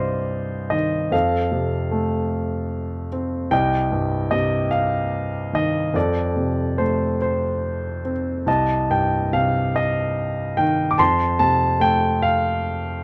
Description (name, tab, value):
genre	classical, lyrical solo piano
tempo	49 BPM (dotted quarters)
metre	6/8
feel	uneven beats, rubato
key	C dorian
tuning	A4 = 438 Hz
part	warm concert grand piano	solo	0.0-13.0 s	C2 to D6	-22 LUFS	equal	none
room	light reverb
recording	none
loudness	-22 LUFS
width	mono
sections	0.0-13.0 A section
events	none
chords	0.0 Cm; 1.1 F; 3.5 Cm; 6.0 F; 8.5 Cm; 11.0 F